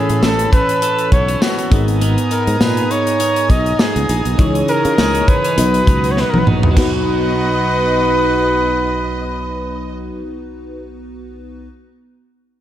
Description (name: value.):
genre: 1980s-style pop.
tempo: 101 BPM.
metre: 4/4.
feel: swing 55% on 16ths.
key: B major.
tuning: A4 = 443 Hz.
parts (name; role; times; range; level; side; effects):
warm flugelhorn; melody; 0.0-9.9 s; F#4 to D#5; -18 LUFS; equal; slapback echo.
FM electric piano with soft pad layer; accompaniment; 0.0-11.7 s; B1 to D#5; -22 LUFS; left 1 dB; chorus.
warm analog pad; sustained chords; 0.0-9.9 s; B3 to E6; -25 LUFS; left 1 dB; chorus.
electric guitar at the edge of break-up; riff; 0.0-10.4 s; E3 to A#4; -24 LUFS; right 4 dB; wide subtle chorus, digital delay.
sustaining fretless electric bass; bass; 0.1-10.1 s; G#1 to C#3; -20 LUFS; equal; none.
modern studio drum kit; drums; 0.1-6.9 s; crash cymbal, hi-hat, kick drum, snare drum, tambourine, toms; -16 LUFS; equal; none.
clear studio violin section; second line; 6.8-9.9 s; D#5; -29 LUFS; equal; slapback echo, digital delay.
room: moderate lush hall reverb, RT60 1.8 s, studio ambience.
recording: big arena sound.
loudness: -13 LUFS.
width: side -12 dB against mid.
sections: 0.0-6.8 A section; 6.8-9.1 B section.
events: drum fill 6.2-6.8.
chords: 0.0 Aadd9; 1.7 G#madd9; 4.4 C#madd9; 5.6 B.